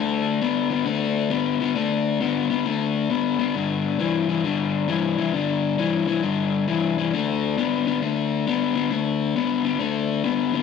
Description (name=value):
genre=blues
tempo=134 BPM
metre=4/4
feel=swing 66% on 8ths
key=unclear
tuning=A4 = 441 Hz
part: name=raw garage guitar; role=solo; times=0.0-10.6 s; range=G2 to B3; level=-21 LUFS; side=left 7 dB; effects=overdrive, spring reverb
room=light reverb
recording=none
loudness=-21 LUFS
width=side -5 dB against mid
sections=0.0-10.6 A section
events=none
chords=0.0 D5; 3.6 G5; 7.1 D5